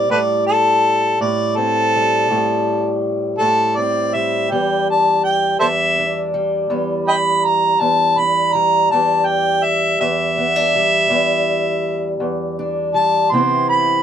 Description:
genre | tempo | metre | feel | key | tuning
acoustic country blues, solo or duo | 54 BPM (dotted quarters) | 12/8 | straight | E minor | A4 = 440 Hz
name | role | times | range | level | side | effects
mellow harmonica | melody | 0.0-14.0 s | A4 to C6 | -15 LUFS | right 1 dB | none
fingerpicked steel-string acoustic guitar | accompaniment | 0.0-14.0 s | E2 to E4 | -20 LUFS | left 1 dB | none
room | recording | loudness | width
moderate booth ambience, RT60 0.2 s | none | -14 LUFS | side -9 dB against mid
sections
0.0-14.0 A section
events
none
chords
0.0 Am7; 4.5 Em7; 13.3 Cmaj7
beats
| 0.11 1.21 2.31 3.41 | 4.51 5.61 6.71 7.81 | 8.91 10.01 11.11 12.21 | 13.32

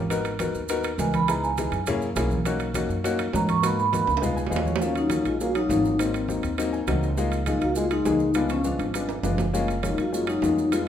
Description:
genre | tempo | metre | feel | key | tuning
Afro-Cuban jazz | 204 BPM | 4/4 | straight | Eb minor from 4.8 s | A4 = 440 Hz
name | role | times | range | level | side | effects
upright bass | bass | 0.0-10.9 s | Gb1 to G#2 | -29 LUFS | right 1 dB | none
warm baby grand piano | accompaniment | 0.1-10.9 s | Gb3 to G#5 | -28 LUFS | left 3 dB | none
congas | percussion | 0.1-10.9 s | none | -32 LUFS | right 1 dB | none
maracas | percussion | 0.1-10.9 s | none | -40 LUFS | right 6 dB | none
timbales | percussion | 0.1-10.9 s | none | -33 LUFS | right 7 dB | none
vibraphone with soft mallets | melody | 1.0-10.9 s | Cb4 to C#6 | -25 LUFS | left 1 dB | none
trombone with bucket mute | second line | 4.8-10.9 s | D3 to Bb3 | -33 LUFS | right 2 dB | none
room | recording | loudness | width
wet large studio reverb, RT60 1.2 s | minimal, uncompressed stereo recording | -22 LUFS | side -9 dB against mid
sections
0.0-4.8 A section; 4.8-10.9 B section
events
vibraphone solo 0.0-4.8; drum fill 4.1-4.8, 9.1-9.5; grand piano fill 4.2-4.8, 6.6-7.2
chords
0.1 G#m7; 1.3 C#m7; 1.9 F#7; 2.5 Bmaj7; 3.6 G#m7; 4.2 C#7; 4.8 Ebm9; 6.0 Ab7; 7.2 Db69; 8.4 Db7b9; 9.5 Gbmaj9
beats
| 0.10 0.40 0.69 0.99 | 1.28 1.58 1.87 2.17 | 2.46 2.75 3.05 3.34 | 3.64 3.93 4.22 4.52 | 4.81 5.11 5.40 5.70 | 5.99 6.29 6.58 6.88 | 7.17 7.47 7.76 8.06 | 8.35 8.65 8.94 9.24 | 9.54 9.83 10.13 10.42 | 10.72

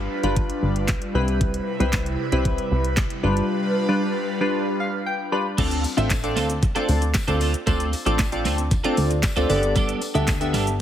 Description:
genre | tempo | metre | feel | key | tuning
dance-pop | 115 BPM | 4/4 | straight | D dorian | A4 = 439 Hz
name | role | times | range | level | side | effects
airy breathy pad | sustained chords | 0.0-5.6 s | C3 to B4 | -28 LUFS | right 1 dB | chorus, phaser, sidechain pumping
plucky analog bass | bass | 0.0-10.8 s | G1 to D2 | -24 LUFS | equal | sidechain pumping
glassy digital keys | accompaniment | 0.2-10.7 s | G3 to B5 | -24 LUFS | left 1 dB | chorus, phaser, sidechain pumping
smooth R&B drum kit | drums | 0.2-10.8 s | crash cymbal, handclaps, hi-hat, kick drum, shaker, snare drum | -24 LUFS | equal | none
twelve-string electric guitar | riff | 5.6-10.7 s | G3 to A4 | -28 LUFS | right 6 dB | ensemble chorus
tambourine | percussion | 5.6-10.7 s | none | -40 LUFS | left 5 dB | none
room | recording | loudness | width
light reverb | heavily compressed radio sound | -20 LUFS | side -10 dB against mid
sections
0.0-5.6 A section; 5.6-10.8 B section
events
synth keys fill 4.5-5.6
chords
0.0 G7; 1.1 Cmaj7; 3.2 G7; 5.6 Dm7; 9.5 Gadd9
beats
0.37 0.89 | 1.41 1.93 2.45 2.97 | 3.50 4.02 4.54 5.06 | 5.58 6.11 6.63 7.15 | 7.67 8.19 8.71 9.23 | 9.76 10.28 10.80

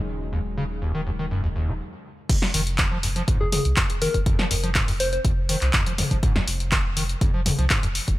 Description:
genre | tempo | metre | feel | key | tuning
acid house | 122 BPM | 4/4 | straight | unclear | A4 = 441 Hz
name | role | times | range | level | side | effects
warm analog pad | sustained chords | 0.0-1.8 s | Db3 to Eb4 | -35 LUFS | left 2 dB | chorus, tremolo, sidechain pumping
round analog bass | bass | 0.0-8.2 s | Eb1 to C2 | -28 LUFS | equal | sidechain pumping
overdriven acid bass | riff | 0.3-7.9 s | Eb2 to Gb3 | -28 LUFS | equal | tube saturation, lush chorus, sidechain pumping
electronic kick drum | drums | 2.3-8.2 s | none | -23 LUFS | equal | none
punchy analog drum machine | drums | 2.3-8.2 s | crash cymbal, handclaps, hi-hat, snare drum, toms | -24 LUFS | equal | none
soft struck synth lead | melody | 3.4-5.2 s | Ab4 to C5 | -28 LUFS | left 2 dB | chorus, cassette tape, tape echo
room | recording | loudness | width
little or no reverb | none | -20 LUFS | side -17 dB against mid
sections
0.0-2.3 A section; 2.3-8.2 B section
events
stop 1.8-2.3; drop 2.3-8.2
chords
0.0 Ebm7; 2.3 N.C.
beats
| 0.33 0.82 1.31 1.80 | 2.29 2.79 3.28 3.77 | 4.26 4.75 5.25 5.74 | 6.23 6.72 7.21 7.70

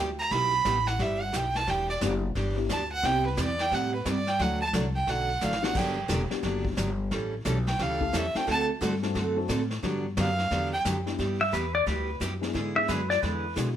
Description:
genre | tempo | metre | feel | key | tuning
country, western swing | 176 BPM | 4/4 | swing 64% on 8ths | G major | A4 = 439 Hz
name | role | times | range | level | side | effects
picked steel-string acoustic guitar | accompaniment | 0.0-13.7 s | C3 to A4 | -31 LUFS | right 2 dB | none
upright bass | bass | 0.0-13.8 s | E1 to B2 | -31 LUFS | left 1 dB | none
clear fiddle | second line | 0.2-10.8 s | B4 to B5 | -28 LUFS | right 3 dB | none
vintage brush drum kit | drums | 0.3-13.8 s | brushed snare drum, crash cymbal, hi-hat, kick drum, snare drum | -35 LUFS | equal | none
dark upright piano | accompaniment | 2.0-3.2, 5.6-13.8 s | G3 to A4 | -34 LUFS | left 7 dB | none
pedal steel guitar | melody | 11.4-13.5 s | B4 to E5 | -26 LUFS | left 2 dB | none
room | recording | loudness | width
light reverb | none | -25 LUFS | side -10 dB against mid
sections
0.0-11.2 A section; 11.2-13.8 A section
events
fiddle solo 0.0-11.2; drum fill 5.4-5.8; pedal steel guitar solo 11.2-13.8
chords
0.0 G6; 1.7 Em7; 3.0 Cmaj7; 4.4 D; 5.8 Gmaj7; 7.1 A7; 8.5 D7; 9.8 Gmaj7; 11.2 G6; 12.6 E7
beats
| 0.31 0.65 0.99 1.33 | 1.67 2.01 2.35 2.69 | 3.03 3.37 3.71 4.05 | 4.39 4.73 5.07 5.41 | 5.75 6.09 6.43 6.77 | 7.11 7.45 7.79 8.13 | 8.47 8.81 9.15 9.49 | 9.83 10.17 10.51 10.85 | 11.19 11.53 11.87 12.21 | 12.55 12.89 13.23 13.57

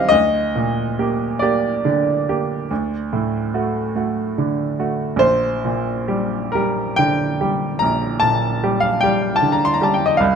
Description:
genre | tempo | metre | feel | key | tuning
classical, romantic nocturne for solo piano | 43-51 BPM (dotted quarters) | 12/8 | rubato | G minor | A4 = 439 Hz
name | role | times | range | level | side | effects
clear baby grand piano | solo | 0.0-10.4 s | Bb1 to C6 | -17 LUFS | right 1 dB | none
room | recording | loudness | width
moderate recital hall reverb, RT60 1.6 s | close, detailed microphones | -17 LUFS | side -6 dB against mid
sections
0.0-10.4 A section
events
none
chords
0.1 Gm/D; 2.7 D; 5.2 Gm/Bb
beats
| 0.12 1.41 2.70 3.96 | 5.22 6.56 7.83 9.03 | 10.21

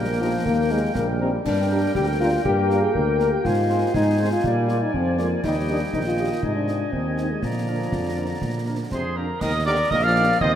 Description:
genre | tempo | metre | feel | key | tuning
military-style march for wind band | 121 BPM | 2/4 | straight | Eb major | A4 = 440 Hz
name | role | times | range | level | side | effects
clear woodwind section | second line | 0.0-10.5 s | G4 to Bb5 | -31 LUFS | right 1 dB | none
warm euphonium | second line | 0.0-10.5 s | Bb2 to Bb4 | -24 LUFS | left 2 dB | none
bright trombone section | sustained chords | 0.0-10.6 s | C3 to C4 | -31 LUFS | right 1 dB | none
mellow tuba | bass | 0.0-10.6 s | Bb1 to Bb2 | -25 LUFS | right 1 dB | none
mellow cornet | melody | 0.2-10.5 s | Bb4 to F5 | -28 LUFS | equal | none
mellow French horn section | accompaniment | 0.2-10.3 s | F3 to G4 | -34 LUFS | right 2 dB | none
concert snare drum, concert bass drum and clash cymbals | drums | 0.5-10.6 s | none | -32 LUFS | right 2 dB | none
bright piccolo | second line | 8.9-10.6 s | Bb5 to F6 | -26 LUFS | right 4 dB | none
room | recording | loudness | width
wet cathedral reverb, RT60 4.9 s | in a vast, echoing space | -20 LUFS | side -9 dB against mid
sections
0.0-9.4 A section; 9.4-10.6 A section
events
none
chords
0.0 Eb; 1.5 Gm; 3.4 Fm/Ab; 4.4 Bb7; 5.4 Eb; 6.4 Ab; 7.4 Bb; 9.4 Eb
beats
| 0.46 0.96 | 1.46 1.96 | 2.45 2.95 | 3.45 3.94 | 4.44 4.94 | 5.44 5.94 | 6.43 6.93 | 7.43 7.93 | 8.42 8.92 | 9.42 9.92 | 10.41

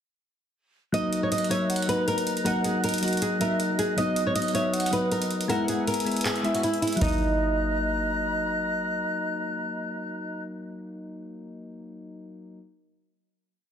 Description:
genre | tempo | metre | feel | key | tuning
hip hop, trap | 158 BPM | 4/4 | half-time | Eb phrygian | A4 = 440 Hz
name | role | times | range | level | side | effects
flamenco guitar | melody | 0.9-8.1 s | Eb4 to Eb5 | -28 LUFS | equal | low-pass filter
warm velvety synth lead | second line | 0.9-8.1 s | Eb5 to Gb5 | -33 LUFS | right 3 dB | chorus, digital delay
soft electric-piano-like synth keys | accompaniment | 0.9-12.6 s | Gb3 to Gb4 | -29 LUFS | left 2 dB | chorus, low-pass filter
small flute group | sustained chords | 0.9-10.4 s | B4 to Gb6 | -32 LUFS | equal | none
booming analog drum machine | drums | 0.9-7.1 s | handclaps, hi-hat, kick drum, toms | -31 LUFS | equal | none
room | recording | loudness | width
light reverb | dense, heavily limited modern master | -24 LUFS | side -8 dB against mid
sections
0.9-7.0 breakdown; 7.0-10.1 final chord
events
kick muted 6.3-7.0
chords
0.9 Ebm; 4.0 B; 5.5 E; 7.0 Ebm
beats
| 0.94 1.32 1.70 2.08 | 2.46 2.84 3.22 3.60 | 3.98 4.36 4.74 5.12 | 5.50 5.88 6.25 6.63 | 7.01 7.39 7.77 8.15 | 8.53 8.91 9.29 9.67

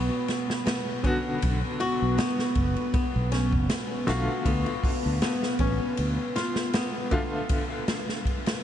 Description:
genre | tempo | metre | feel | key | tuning
trip hop | 79 BPM | 4/4 | swing 55% on 16ths | B minor | A4 = 440 Hz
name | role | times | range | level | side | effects
dark analog pad | sustained chords | 0.0-8.6 s | B3 to B4 | -31 LUFS | right 1 dB | chorus
flamenco guitar | arpeggios | 0.0-7.5 s | B3 to F#4 | -33 LUFS | left 3 dB | vintage 12-bit sampler grit, tape echo
fingered electric bass | bass | 0.0-6.2 s | F#1 to D2 | -27 LUFS | equal | none
swinging big-band drum kit | drums | 0.3-8.6 s | hi-hat, kick drum, ride cymbal, snare drum | -29 LUFS | equal | vintage 12-bit sampler grit
clear upright piano | accompaniment | 1.0-7.9 s | D3 to F#4 | -33 LUFS | left 1 dB | tremolo, tape echo
room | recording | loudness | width
moderate huge ambient reverb, RT60 7.8 s | dreamy mix soaked in reverb, vinyl crackle, nothing above 10.9 kHz | -24 LUFS | side -10 dB against mid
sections
0.0-8.6 A section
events
none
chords
0.0 Bm; 4.5 Dm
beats
0.66 | 1.42 2.18 2.94 3.70 | 4.46 5.22 5.98 6.74 | 7.50 8.26

